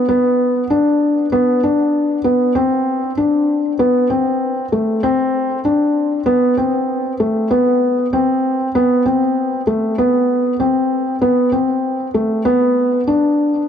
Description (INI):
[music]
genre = electronica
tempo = 97 BPM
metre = 4/4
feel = straight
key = unclear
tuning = A4 = 440 Hz
[part]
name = felt-muted upright piano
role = solo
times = 0.0-13.6 s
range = A3 to D4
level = -14 LUFS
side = left 1 dB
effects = digital delay
[sound]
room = moderate huge ambient reverb, RT60 4.3 s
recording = none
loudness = -14 LUFS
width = side -8 dB against mid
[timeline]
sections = 0.0-13.7 A section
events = none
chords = none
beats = | 0.09 0.70 1.32 1.94 | 2.56 3.18 3.80 4.42 | 5.04 5.65 6.27 6.89 | 7.51 8.13 8.75 9.37 | 9.98 10.60 11.22 11.84 | 12.46 13.08